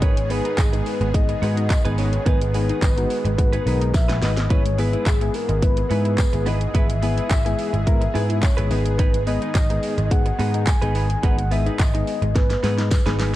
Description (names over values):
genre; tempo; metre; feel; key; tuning
dance-pop; 107 BPM; 4/4; straight; G# minor; A4 = 440 Hz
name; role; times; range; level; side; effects
soft octave-layered synth lead; melody; 0.0-13.2 s; G#4 to G#5; -27 LUFS; left 1 dB; chorus
soft electric-piano-like synth keys; accompaniment; 0.0-13.3 s; G#3 to B4; -29 LUFS; left 3 dB; chorus, tremolo, sidechain pumping
soft supersaw; sustained chords; 0.0-13.4 s; G#2 to G#4; -33 LUFS; equal; sidechain pumping
tight sequenced synth; arpeggios; 0.0-13.3 s; D#3 to E5; -34 LUFS; left 2 dB; none
direct-recorded clean electric guitar; riff; 0.0-13.3 s; B3 to B4; -32 LUFS; right 6 dB; lush chorus
vintage muted picked electric bass; bass; 0.0-13.4 s; G#1 to G#2; -22 LUFS; equal; sidechain pumping
pop drum kit; drums; 0.0-13.3 s; handclaps, hi-hat, kick drum, snare drum; -21 LUFS; equal; none
tambourine; percussion; 0.6-13.1 s; none; -39 LUFS; left 6 dB; none
room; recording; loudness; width
digital ambience; dark, warm production; -18 LUFS; side -15 dB against mid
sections
0.0-13.4 A section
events
drum fill 3.9-4.5, 12.4-13.4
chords
0.0 G#m; 4.5 E/G#; 8.7 G#m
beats
| 0.02 0.58 1.14 1.70 | 2.26 2.82 3.38 3.94 | 4.50 5.07 5.63 6.19 | 6.75 7.31 7.87 8.43 | 8.99 9.55 10.11 10.67 | 11.23 11.79 12.36 12.92